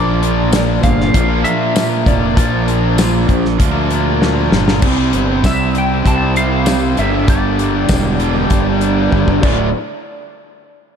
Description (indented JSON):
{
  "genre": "classic rock",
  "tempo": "98 BPM",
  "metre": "4/4",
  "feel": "straight",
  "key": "unclear",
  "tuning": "A4 = 436 Hz",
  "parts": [
    { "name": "lightly driven lead guitar", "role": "melody", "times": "0.0-9.7 s", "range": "D5 to A5", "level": "-22 LUFS", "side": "equal", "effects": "wah, slapback echo, analog delay" },
    { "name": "cranked stack guitar", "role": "riff", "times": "0.0-9.7 s", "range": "D2 to C4", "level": "-18 LUFS", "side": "right 11 dB", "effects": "overdrive, slapback echo" },
    { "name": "raw garage guitar", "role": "riff", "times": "0.0-9.7 s", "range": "D2 to C5", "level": "-20 LUFS", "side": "left 12 dB", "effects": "overdrive" },
    { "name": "fuzz fingered electric bass", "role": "bass", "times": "0.0-9.7 s", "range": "D1 to D2", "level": "-17 LUFS", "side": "equal", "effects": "overdrive" },
    { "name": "damped 70s drum kit", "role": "drums", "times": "0.2-9.6 s", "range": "crash cymbal, hi-hat, kick drum, snare drum, tambourine", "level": "-17 LUFS", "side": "left 1 dB", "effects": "none" }
  ],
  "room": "light reverb, small room ambience",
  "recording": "none",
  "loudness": "-12 LUFS",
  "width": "side -7 dB against mid",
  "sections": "0.0-4.8 A section; 4.8-9.7 B section; 9.7-11.0 C section",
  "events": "drum fill 4.2-4.8, 9.1-9.7",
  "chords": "0.0 Bb; 4.8 C; 7.0 Gm; 9.4 Dm; 9.7 N.C.",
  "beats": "0.54 1.15 1.76 | 2.37 2.99 3.60 4.21 | 4.83 5.44 6.05 6.67 | 7.28 7.90 8.51 9.12"
}